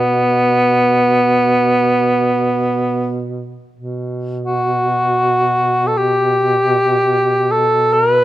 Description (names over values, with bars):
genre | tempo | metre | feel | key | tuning
caucasian folk, Caucasian lament | free time | none | none | unclear | A4 = 440 Hz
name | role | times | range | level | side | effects
mellow cor anglais | melody | 0.0-8.2 s | B3 to B4 | -13 LUFS | equal | none
mellow duduk | drone | 0.0-8.2 s | B2 | -22 LUFS | right 2 dB | none
room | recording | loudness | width
light reverb | close, detailed microphones | -13 LUFS | side -14 dB against mid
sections
0.0-3.8 A section; 3.8-8.2 A section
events
none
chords
none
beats
free time